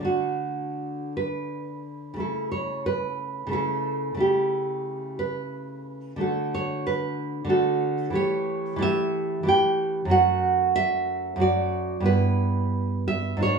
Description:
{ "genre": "romantic piece for solo classical guitar", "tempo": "77-94 BPM", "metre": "3/4", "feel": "rubato", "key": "D major", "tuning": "A4 = 438 Hz", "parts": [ { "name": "nylon-string guitar", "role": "solo", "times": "0.0-13.6 s", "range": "F#2 to G5", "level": "-23 LUFS", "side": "right 2 dB", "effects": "none" } ], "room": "moderate studio reverb, RT60 0.5 s", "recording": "small room reverb", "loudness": "-23 LUFS", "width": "side -5 dB against mid", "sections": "0.0-13.6 A section", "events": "none", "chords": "0.0 D; 2.2 A/C#; 6.2 D; 8.1 A7/E; 10.1 D/F#; 12.1 Em/G" }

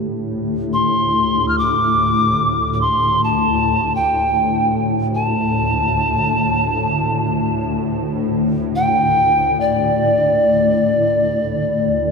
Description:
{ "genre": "world meditative, free-time meditation music", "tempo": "free time", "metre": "none", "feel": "none", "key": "unclear", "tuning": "A4 = 441 Hz", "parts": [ { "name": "swarming drone", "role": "drone", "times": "0.0-12.1 s", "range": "D2 to A2", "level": "-19 LUFS", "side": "left 1 dB", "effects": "built-in reverb" }, { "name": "bronze singing bowl", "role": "texture", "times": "0.0-1.0 s", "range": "G4", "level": "-40 LUFS", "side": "right 2 dB", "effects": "none" }, { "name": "polished pan flute", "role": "melody", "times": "0.7-12.1 s", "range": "D5 to F6", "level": "-16 LUFS", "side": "equal", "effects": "tape echo" } ], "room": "wet plate reverb, RT60 3.4 s", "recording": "dreamy mix soaked in reverb", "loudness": "-15 LUFS", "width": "side -4 dB against mid", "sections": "0.0-12.1 A section", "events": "none", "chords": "none" }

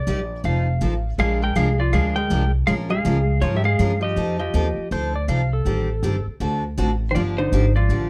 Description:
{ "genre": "country, western swing", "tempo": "161 BPM", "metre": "4/4", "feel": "swing 63% on 8ths", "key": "unclear", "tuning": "A4 = 435 Hz", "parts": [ { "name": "pedal steel guitar", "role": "second line", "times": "0.0-1.1, 4.9-6.3 s", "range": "A4 to F5", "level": "-31 LUFS", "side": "equal", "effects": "none" }, { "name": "upright bass", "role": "bass", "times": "0.0-8.1 s", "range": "F1 to Ab2", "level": "-24 LUFS", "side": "equal", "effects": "none" }, { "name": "picked steel-string acoustic guitar", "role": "accompaniment", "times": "0.1-8.1 s", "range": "C3 to Bb4", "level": "-29 LUFS", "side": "equal", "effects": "none" }, { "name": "clean lap steel guitar", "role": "melody", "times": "1.2-8.1 s", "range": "Eb4 to G5", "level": "-26 LUFS", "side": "equal", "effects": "none" }, { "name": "vintage hollow-body jazz guitar", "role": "second line", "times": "1.2-4.9, 7.1-8.1 s", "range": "D3 to Ab3", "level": "-29 LUFS", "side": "equal", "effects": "none" } ], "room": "light reverb", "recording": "none", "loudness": "-21 LUFS", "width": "mono", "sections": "0.0-8.1 A section", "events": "none", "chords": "0.4 F7; 1.2 Bb9; 2.7 Bbm7; 4.2 F9; 5.7 Am7b5; 6.4 D7; 7.2 Gm7" }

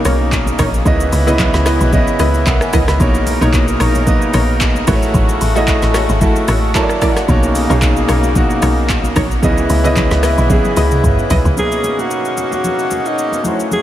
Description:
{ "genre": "amapiano", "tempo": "112 BPM", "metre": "4/4", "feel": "swing 55% on 16ths", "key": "B major", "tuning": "A4 = 440 Hz", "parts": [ { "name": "warm grand piano", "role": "accompaniment", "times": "0.0-13.8 s", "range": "B2 to C#6", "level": "-18 LUFS", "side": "right 1 dB", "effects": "none" }, { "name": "accordion", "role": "sustained chords", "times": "0.0-13.8 s", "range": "A2 to A#4", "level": "-21 LUFS", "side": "left 1 dB", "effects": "sidechain pumping" }, { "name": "punchy chord stab", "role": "stabs", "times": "0.1-11.4 s", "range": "D#4 to D#5", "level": "-23 LUFS", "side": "left 1 dB", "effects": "none" }, { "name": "woody log drum bass", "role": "bass", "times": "0.1-11.6 s", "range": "G#1 to C#2", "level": "-16 LUFS", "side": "equal", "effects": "none" }, { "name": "afro-pop drum kit", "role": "drums", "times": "0.1-13.8 s", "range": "handclaps, hi-hat, kick drum, rim click, shaker, snare drum, toms", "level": "-17 LUFS", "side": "equal", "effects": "none" }, { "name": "congas", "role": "percussion", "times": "0.1-13.8 s", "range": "none", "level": "-25 LUFS", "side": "left 2 dB", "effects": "none" }, { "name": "breathy alto saxophone", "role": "melody", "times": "11.6-13.8 s", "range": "D#4 to G#4", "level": "-18 LUFS", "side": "equal", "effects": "tape echo" } ], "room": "moderate huge ambient reverb, RT60 8.9 s", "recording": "dreamy mix soaked in reverb", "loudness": "-11 LUFS", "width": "side -12 dB against mid", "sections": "0.0-11.6 A section; 11.6-13.8 B section", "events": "drop 0.0-11.6; grand piano fill 6.2-7.3; drum fill 10.5-11.6", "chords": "0.0 Bmaj9; 0.9 C#m9; 3.0 Bmaj9; 4.9 A6; 6.8 F#7alt; 7.3 Bmaj9; 9.4 C#m9; 11.6 Bmaj9" }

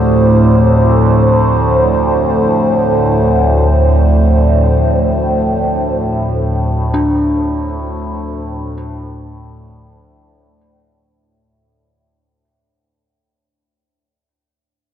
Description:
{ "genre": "dark ambient drone", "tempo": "free time", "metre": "none", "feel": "none", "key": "D minor", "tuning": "A4 = 441 Hz", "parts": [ { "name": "dark analog pad", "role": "sustained chords", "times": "0.0-11.2 s", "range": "F3 to D5", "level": "-18 LUFS", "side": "right 2 dB", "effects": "chorus" }, { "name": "dark detuned synth bell", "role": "arpeggios", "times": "0.0-14.3 s", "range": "D4 to G4", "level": "-22 LUFS", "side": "left 1 dB", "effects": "chorus, tape echo" }, { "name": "overtone-sweeping drone", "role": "drone", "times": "0.0-11.3 s", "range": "D2 to A2", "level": "-12 LUFS", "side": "equal", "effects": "chorus, built-in reverb, phaser" } ], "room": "wet huge ambient reverb, RT60 8.8 s", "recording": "dark, warm production", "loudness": "-10 LUFS", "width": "side -10 dB against mid", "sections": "0.0-11.2 A section", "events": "filter sweep on synth drone 0.0-11.2; fade-out 4.7-11.2", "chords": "0.0 Dm" }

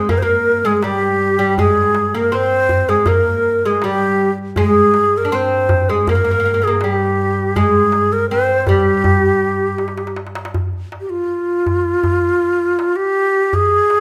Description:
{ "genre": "Arabic maqam ensemble", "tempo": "80 BPM", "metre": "4/4", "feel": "straight", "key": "G maqam kurd", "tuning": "A4 = 439 Hz", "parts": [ { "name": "breathy ney", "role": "melody", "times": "0.0-14.0 s", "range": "F4 to C5", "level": "-17 LUFS", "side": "equal", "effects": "none" }, { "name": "oud", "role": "second line", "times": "0.0-10.1 s", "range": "G3 to D4", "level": "-22 LUFS", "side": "equal", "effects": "none" }, { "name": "warm double bass", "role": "drone", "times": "0.0-10.6 s", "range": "G2", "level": "-28 LUFS", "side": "equal", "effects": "none" }, { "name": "darbuka", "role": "percussion", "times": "0.1-14.0 s", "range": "none", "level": "-23 LUFS", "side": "equal", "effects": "none" } ], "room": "moderate recital hall reverb, RT60 1.3 s", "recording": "none", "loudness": "-16 LUFS", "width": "mono", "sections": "0.0-10.6 A section; 10.6-14.0 B section", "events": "drum fill 9.8-10.6", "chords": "none" }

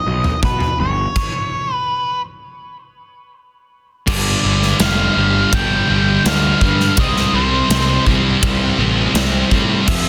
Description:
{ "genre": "quiet-loud alternative rock", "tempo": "82 BPM", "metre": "4/4", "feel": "straight", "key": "unclear", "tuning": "A4 = 440 Hz", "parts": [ { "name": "octave-fuzz lead guitar", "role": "melody", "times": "0.0-10.1 s", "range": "B4 to G5", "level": "-24 LUFS", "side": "equal", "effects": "distortion, analog delay" }, { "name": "electric guitar through a small old amp", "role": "arpeggios", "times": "0.0-1.1 s", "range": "B2 to F#3", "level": "-31 LUFS", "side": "equal", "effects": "none" }, { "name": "fuzz picked electric bass", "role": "bass", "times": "0.1-10.1 s", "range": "F1 to B2", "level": "-22 LUFS", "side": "equal", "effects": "overdrive" }, { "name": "big rock drum kit", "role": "drums", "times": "0.2-10.0 s", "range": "crash cymbal, kick drum, ride cymbal, snare drum, toms", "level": "-22 LUFS", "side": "equal", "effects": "soft clipping on snare" }, { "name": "high-gain distorted guitar", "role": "riff", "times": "4.1-10.1 s", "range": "F2 to C4", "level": "-21 LUFS", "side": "equal", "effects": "distortion" }, { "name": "thick fuzz guitar", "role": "riff", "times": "4.1-10.1 s", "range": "F2 to C4", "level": "-23 LUFS", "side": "equal", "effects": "distortion" } ], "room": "light reverb", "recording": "dense, heavily limited modern master", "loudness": "-16 LUFS", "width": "mono", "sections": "0.0-4.1 A section; 4.1-10.1 B section", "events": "stop 1.2-4.1", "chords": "0.0 B; 1.2 N.C.; 4.1 G5; 7.0 C5" }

